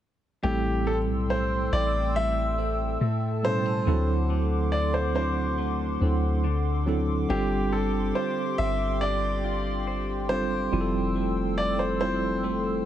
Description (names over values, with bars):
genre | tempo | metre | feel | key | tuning
R&B | 70 BPM | 4/4 | straight | A minor | A4 = 439 Hz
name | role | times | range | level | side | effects
clear baby grand piano | melody | 0.4-12.9 s | G4 to E5 | -29 LUFS | equal | ping-pong delay
mellow tine electric piano | accompaniment | 0.4-12.9 s | B2 to C5 | -30 LUFS | right 3 dB | medium stereo tremolo
hollow soft pad | sustained chords | 0.9-12.9 s | G4 to E6 | -34 LUFS | left 1 dB | chorus
clean electric guitar | arpeggios | 0.4-12.9 s | A2 to C5 | -34 LUFS | left 8 dB | ping-pong delay
soft 808-style bass | bass | 0.4-12.8 s | F1 to A2 | -28 LUFS | equal | none
room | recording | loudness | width
light reverb | none | -24 LUFS | side -11 dB against mid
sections
0.4-12.9 A section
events
none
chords
0.4 Am7; 3.0 A7; 3.9 D7; 7.3 G7sus4; 10.7 Fmaj7